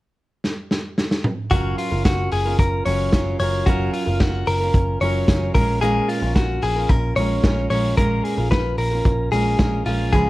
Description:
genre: jangly indie pop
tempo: 111 BPM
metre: 4/4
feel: straight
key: F# major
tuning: A4 = 440 Hz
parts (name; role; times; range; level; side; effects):
- vintage drum kit; drums; 0.4-10.3 s; hi-hat, kick drum, snare drum, toms; -21 LUFS; equal; none
- fingerpicked steel-string acoustic guitar; accompaniment; 1.5-10.3 s; A#2 to B4; -25 LUFS; right 3 dB; none
- direct-recorded clean electric guitar; arpeggios; 1.5-10.3 s; E#4 to C#5; -23 LUFS; left 2 dB; slapback echo
- vintage muted picked electric bass; bass; 1.5-10.3 s; F#1 to C#2; -23 LUFS; equal; none
room: light reverb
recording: none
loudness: -18 LUFS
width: side -18 dB against mid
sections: 0.0-1.5 A section; 1.5-10.3 B section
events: drum fill 0.4-1.5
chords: 0.0 N.C.; 1.5 F#maj7; 5.5 A#m7

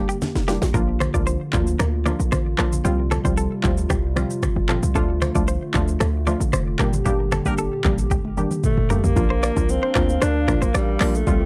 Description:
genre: afrobeats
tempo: 114 BPM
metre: 4/4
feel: straight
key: unclear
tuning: A4 = 440 Hz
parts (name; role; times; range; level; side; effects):
- glassy wavetable pluck; accompaniment; 0.0-11.5 s; F3 to G4; -29 LUFS; equal; chorus
- hollow soft pad; sustained chords; 0.0-11.5 s; Bb2 to G5; -32 LUFS; equal; chorus
- hard-hitting 808-style bass; bass; 0.0-11.5 s; F1 to D2; -25 LUFS; equal; none
- direct-recorded clean electric guitar; riff; 0.1-11.1 s; G4 to D5; -32 LUFS; equal; analog delay
- afro-pop drum kit; drums; 0.1-11.4 s; finger snaps, handclaps, hi-hat, kick drum, rim click, shaker, snare drum, toms; -26 LUFS; equal; none
- congas; percussion; 0.2-9.2 s; none; -32 LUFS; equal; none
- breathy alto saxophone; melody; 8.7-11.5 s; G3 to D4; -27 LUFS; equal; analog delay
room: little or no reverb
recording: dry, gritty hardware recording, transformer saturation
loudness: -21 LUFS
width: mono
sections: 0.7-9.2 A section; 9.2-11.5 B section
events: drum fill 0.2-0.7, 8.1-9.2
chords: 0.0 Gm; 0.7 Bb; 2.8 Csus4; 5.0 Dm; 6.8 Gm; 9.2 Bb

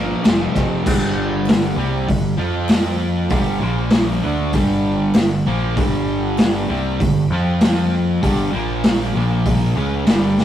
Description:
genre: garage rock duo or trio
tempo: 98 BPM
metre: 4/4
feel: straight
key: G minor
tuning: A4 = 442 Hz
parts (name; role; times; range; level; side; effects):
- fuzz guitar; riff; 0.0-10.4 s; F2 to F4; -19 LUFS; equal; distortion
- growling picked electric bass; bass; 0.0-10.4 s; F1 to F2; -24 LUFS; equal; overdrive, tube saturation
- raw garage drum kit; drums; 0.2-10.4 s; crash cymbal, hi-hat, kick drum, ride cymbal, snare drum; -18 LUFS; equal; none
- group handclap; percussion; 0.3-10.2 s; none; -42 LUFS; left 4 dB; none
room: light reverb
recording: rough rehearsal-room recording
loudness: -15 LUFS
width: side -11 dB against mid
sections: 0.9-10.4 A section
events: none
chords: 0.3 F5; 0.9 G5; 2.4 F5; 3.3 G5; 3.6 Bb5; 4.2 Gm; 7.3 F5; 8.2 G5; 8.5 Bb5; 9.8 G5

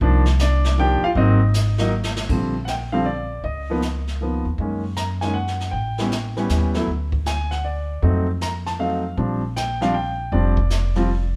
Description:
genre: jazz piano trio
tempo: 157 BPM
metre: 3/4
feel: swing 65% on 8ths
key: Bb major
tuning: A4 = 440 Hz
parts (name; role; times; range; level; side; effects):
- clear concert grand piano; melody; 0.0-11.3 s; D3 to Bb5; -25 LUFS; equal; none
- upright bass; bass; 0.0-11.4 s; F1 to Gb2; -24 LUFS; equal; none
- jazz brush drum kit; drums; 0.0-11.4 s; brushed snare drum, hi-hat, kick drum, ride cymbal, snare drum; -32 LUFS; equal; none
room: moderate stone room reverb, RT60 1.0 s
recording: band playing live in one room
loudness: -21 LUFS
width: mono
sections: 0.0-2.3 A section; 2.3-11.4 B section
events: drum fill 1.9-2.3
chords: 0.0 Cm11; 1.2 Ab7sus2; 2.3 Bb6; 3.4 Db13; 4.6 Gb6; 5.7 A7; 6.9 N.C.; 8.0 F7b9; 9.2 Bb6

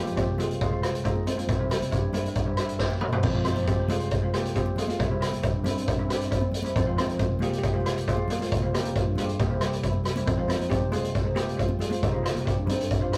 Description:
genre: calypso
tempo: 137 BPM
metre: 4/4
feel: straight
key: F minor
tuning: A4 = 441 Hz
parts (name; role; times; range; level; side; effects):
- steel pan; melody; 0.0-13.2 s; G3 to G4; -34 LUFS; equal; none
- steel pan; accompaniment; 0.0-13.2 s; G3 to Ab4; -35 LUFS; equal; none
- overdriven fingered electric bass; bass; 0.0-13.2 s; C2 to G2; -35 LUFS; equal; none
- street-band drum kit; drums; 0.1-13.2 s; crash cymbal, hi-hat, kick drum, rim click, snare drum, toms; -29 LUFS; equal; none
- congas; percussion; 0.1-12.8 s; none; -40 LUFS; equal; none
room: moderate booth ambience, RT60 0.2 s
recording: rough rehearsal-room recording, tube saturation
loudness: -26 LUFS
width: mono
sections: 0.0-3.2 A section; 3.2-13.2 A section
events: drum fill 2.8-3.2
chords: 0.0 Fm7; 1.5 C; 3.2 Fm7; 5.0 C; 6.8 C7sus4; 9.4 C7; 10.3 Fm7; 12.0 Csus4

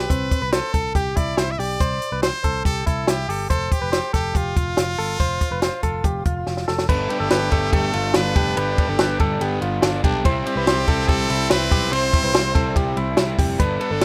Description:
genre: jangly indie pop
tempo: 142 BPM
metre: 4/4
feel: straight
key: C major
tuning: A4 = 445 Hz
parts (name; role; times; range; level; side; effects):
- brilliant trumpet; melody; 0.0-14.0 s; F4 to E5; -28 LUFS; equal; none
- direct-recorded clean electric guitar; arpeggios; 0.0-14.0 s; C4 to C5; -28 LUFS; equal; none
- picked electric bass; bass; 0.0-14.0 s; F1 to C2; -29 LUFS; equal; none
- compact cocktail drum kit; drums; 0.1-14.0 s; crash cymbal, hi-hat, kick drum, ride cymbal, snare drum; -24 LUFS; equal; none
- growling trumpet; second line; 6.9-14.0 s; A3 to D4; -33 LUFS; equal; none
- crunchy overdriven guitar; accompaniment; 6.9-14.0 s; C3 to A4; -29 LUFS; equal; none
room: little or no reverb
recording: rough home demo mix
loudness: -21 LUFS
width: mono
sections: 0.0-6.9 A section; 6.9-14.0 B section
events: drum fill 6.5-6.9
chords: 0.1 Cadd9; 3.5 F; 6.9 Gadd9; 10.2 C

